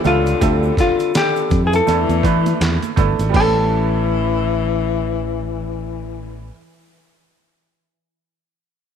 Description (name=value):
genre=hip hop, jazz-hop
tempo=82 BPM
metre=4/4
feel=swing 60% on 16ths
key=unclear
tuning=A4 = 444 Hz
part: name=vintage hollow-body jazz guitar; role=melody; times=0.0-6.5 s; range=F4 to A4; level=-20 LUFS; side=left 1 dB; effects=none
part: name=breathy tenor saxophone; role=second line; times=0.0-6.5 s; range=D3 to E3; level=-23 LUFS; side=left 12 dB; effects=none
part: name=clear baby grand piano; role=accompaniment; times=0.0-6.6 s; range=G3 to E5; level=-24 LUFS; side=right 12 dB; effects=none
part: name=fingered electric bass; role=bass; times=0.0-6.5 s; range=G1 to E3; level=-20 LUFS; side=equal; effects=none
part: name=congas and tube shaker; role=percussion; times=0.0-3.7 s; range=none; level=-30 LUFS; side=right 14 dB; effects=none
part: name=trip hop sampler-style drum kit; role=drums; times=0.1-3.5 s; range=crash cymbal, hi-hat, kick drum, snare drum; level=-21 LUFS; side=equal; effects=none
room=light reverb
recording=1960s-style stereo with parts hard left and right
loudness=-15 LUFS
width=side -8 dB against mid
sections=0.0-3.3 A section; 3.3-6.3 B section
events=none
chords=0.4 D7sus4; 1.9 E7sus4; 3.3 A7